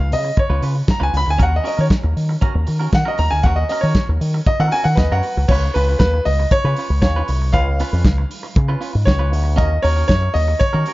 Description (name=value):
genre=disco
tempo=117 BPM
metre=4/4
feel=straight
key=unclear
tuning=A4 = 440 Hz
part: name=clear grand piano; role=melody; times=0.0-10.9 s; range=Cb5 to Cb6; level=-20 LUFS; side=equal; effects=none
part: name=clean electric guitar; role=accompaniment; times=0.0-10.9 s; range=Db4 to Cb5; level=-29 LUFS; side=right 4 dB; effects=spring reverb
part: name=fingered electric bass with an envelope filter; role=bass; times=0.0-10.8 s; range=C2 to Eb3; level=-17 LUFS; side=equal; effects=none
part: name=warm soul drum kit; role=drums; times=0.1-10.9 s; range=crash cymbal, hi-hat, kick drum, snare drum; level=-19 LUFS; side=equal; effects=none
room=studio ambience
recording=dark, warm production, nothing above 7.5 kHz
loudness=-15 LUFS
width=side -18 dB against mid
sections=0.0-5.5 A section; 5.5-10.9 B section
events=grand piano solo 0.0-5.5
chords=0.0 Db7; 1.4 Ebm7; 5.5 Db7; 9.6 Ebm7